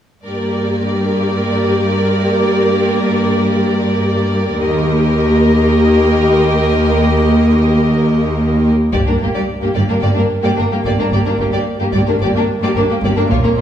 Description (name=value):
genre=cinematic, epic orchestral film score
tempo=110 BPM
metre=4/4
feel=straight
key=G minor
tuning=A4 = 439 Hz
part: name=clear symphonic violin section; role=second line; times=0.2-13.6 s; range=Bb3 to Eb5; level=-20 LUFS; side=equal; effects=none
part: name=clear symphonic viola section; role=accompaniment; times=0.3-13.5 s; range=Bb3 to G4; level=-18 LUFS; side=equal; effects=none
part: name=rich symphonic cello section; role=bass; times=0.3-13.6 s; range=Eb2 to Bb2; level=-16 LUFS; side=equal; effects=none
part: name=rich symphonic violin section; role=melody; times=8.9-13.6 s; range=F4 to D5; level=-20 LUFS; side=left 1 dB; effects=none
part: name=rich symphonic double bass section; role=bass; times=8.9-13.6 s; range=G1 to Bb1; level=-20 LUFS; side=right 1 dB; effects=none
part: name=taiko ensemble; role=drums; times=8.9-10.0, 13.3-13.6 s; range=none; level=-20 LUFS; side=equal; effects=none
room=wet recital hall reverb, RT60 1.6 s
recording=heard from further back in the room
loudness=-12 LUFS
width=side -10 dB against mid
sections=0.2-8.9 A section; 8.9-13.6 B section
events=build-up 8.9-13.6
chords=0.2 Gm; 4.6 Eb; 8.9 Gm